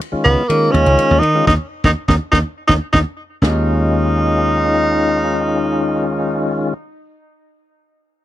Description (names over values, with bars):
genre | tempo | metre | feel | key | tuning
electric jazz fusion | 122 BPM | 4/4 | straight | unclear | A4 = 437 Hz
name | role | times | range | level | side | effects
tight funk drum kit | drums | 0.0-3.5 s | china cymbal, kick drum, ride cymbal, snare drum | -21 LUFS | right 1 dB | none
tonewheel organ | accompaniment | 0.1-6.7 s | Eb3 to F4 | -18 LUFS | left 2 dB | slow rotary speaker, overdrive
dry thumbed slap bass | bass | 0.1-6.7 s | Db2 to Eb3 | -17 LUFS | equal | none
clear tenor saxophone | melody | 0.2-6.7 s | Bb3 to Eb4 | -16 LUFS | right 1 dB | none
room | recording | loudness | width
little or no reverb | dry, close 1970s-style studio recording | -13 LUFS | side -13 dB against mid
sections
0.0-3.4 A section; 3.4-7.3 B section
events
band accent 1.5-3.4; tonewheel organ fill 2.7-3.4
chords
0.0 Eb9sus4